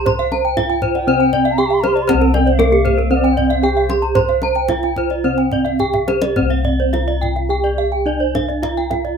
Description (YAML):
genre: Balinese gamelan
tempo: 106-119 BPM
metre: 4/4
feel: straight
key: C slendro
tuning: A4 = 440 Hz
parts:
  - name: gamelan-type bronze metallophone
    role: melody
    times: 0.0-9.2 s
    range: Bb3-45c to C5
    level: -18 LUFS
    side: right 4 dB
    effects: none
  - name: reedy bansuri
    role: second line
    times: 0.0-4.3 s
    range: C5 to C6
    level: -23 LUFS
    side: left 2 dB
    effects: none
  - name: gamelan-type bronze metallophone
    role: arpeggios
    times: 0.0-9.2 s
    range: G4+25c to Bb5-45c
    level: -22 LUFS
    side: right 3 dB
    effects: none
  - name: gamelan-type bossed gongs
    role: bass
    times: 0.0-9.2 s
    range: C2 to C5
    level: -21 LUFS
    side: left 2 dB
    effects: none
  - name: gamelan-type bronze metallophone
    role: arpeggios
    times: 0.1-8.9 s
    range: Bb4-45c to C6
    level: -21 LUFS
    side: left 6 dB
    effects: none
  - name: kendang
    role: percussion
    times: 0.1-9.1 s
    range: none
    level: -25 LUFS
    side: left 1 dB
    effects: none
room: light reverb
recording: minimal, uncompressed stereo recording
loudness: -14 LUFS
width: side -6 dB against mid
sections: 0.0-6.4 A section; 6.4-9.2 B section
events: drum fill 5.8-6.4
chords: none